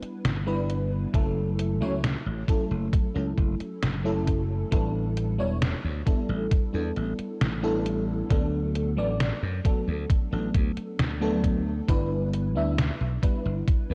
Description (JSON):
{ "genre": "vaporwave", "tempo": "67 BPM", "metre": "4/4", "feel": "straight", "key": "D major", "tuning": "A4 = 440 Hz", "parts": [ { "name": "FM electric piano with soft pad layer", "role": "accompaniment", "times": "0.0-13.9 s", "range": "F#3 to E5", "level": "-32 LUFS", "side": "equal", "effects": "phaser, ensemble chorus, analog delay" }, { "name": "slap bass", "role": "bass", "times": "0.0-13.9 s", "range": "E1 to F#2", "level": "-31 LUFS", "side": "equal", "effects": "none" }, { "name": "detuned 8-bit digital drum machine", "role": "drums", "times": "0.0-13.9 s", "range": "hi-hat, snare drum", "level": "-32 LUFS", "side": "equal", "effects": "small room ambience, gated reverb" }, { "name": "electronic kick drum", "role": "drums", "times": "1.1-13.9 s", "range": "none", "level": "-26 LUFS", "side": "equal", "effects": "small room ambience" } ], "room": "light reverb, digital ambience", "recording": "cassette tape", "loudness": "-27 LUFS", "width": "mono", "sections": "0.0-13.9 A section", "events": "none", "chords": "0.0 G6; 1.1 F#m7; 4.7 A9sus4; 8.3 D6; 11.9 G6", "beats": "0.25 | 1.14 2.04 2.94 3.83 | 4.73 5.62 6.52 7.41 | 8.31 9.20 10.10 10.99 | 11.89 12.79 13.68" }